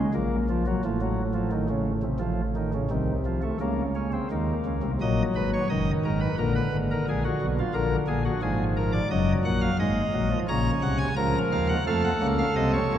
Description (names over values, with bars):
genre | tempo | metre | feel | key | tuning
classical, baroque-style 4-part fugue for pipe organ | 87 BPM | 4/4 | straight | unclear | A4 = 440 Hz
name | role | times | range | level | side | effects
pipe organ, cornet | solo | 0.0-13.0 s | Gb1 to Bb5 | -23 LUFS | equal | none
room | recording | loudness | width
wet church reverb, RT60 3.4 s | dark, warm production | -23 LUFS | side -10 dB against mid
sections
0.0-5.0 A section; 5.0-13.0 B section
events
none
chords
0.0 Bbm; 0.8 F/A; 2.2 F7/A; 3.6 Bbm/Db; 5.0 Ebm; 6.4 Bb; 7.7 Bb7; 9.1 Ebm/Gb; 10.5 Bbm; 11.9 F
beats
0.14 0.83 1.52 | 2.21 2.90 3.60 4.29 | 4.99 5.69 6.38 7.07 | 7.75 8.43 9.11 9.80 | 10.49 11.18 11.87 12.57